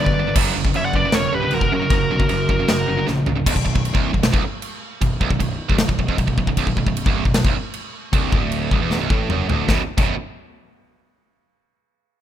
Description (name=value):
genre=heavy metal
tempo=154 BPM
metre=4/4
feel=straight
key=B harmonic minor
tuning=A4 = 440 Hz
part: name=high-gain lead guitar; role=melody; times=0.0-3.0 s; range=A#4 to F#5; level=-22 LUFS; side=left 1 dB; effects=distortion
part: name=high-gain lead guitar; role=second line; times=0.0-3.1 s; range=F#4 to D5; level=-30 LUFS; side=equal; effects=distortion
part: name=distorted electric guitar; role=riff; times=0.0-10.1 s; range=B1 to F#3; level=-28 LUFS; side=left 13 dB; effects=distortion
part: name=tight distorted guitar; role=riff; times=0.0-10.1 s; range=B1 to F#3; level=-23 LUFS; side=right 8 dB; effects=distortion
part: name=fuzz picked electric bass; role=bass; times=0.0-10.2 s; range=B0 to F#2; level=-27 LUFS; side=left 1 dB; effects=overdrive
part: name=big rock drum kit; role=drums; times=0.1-10.1 s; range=china cymbal, crash cymbal, kick drum, snare drum, toms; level=-20 LUFS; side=equal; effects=none
room=studio ambience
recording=rough home demo mix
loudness=-17 LUFS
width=side -10 dB against mid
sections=0.0-3.5 A section; 3.5-9.7 B section; 9.7-11.2 C section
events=drum fill 3.1-3.5, 8.9-9.7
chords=0.4 F#; 3.5 Bm; 9.7 B5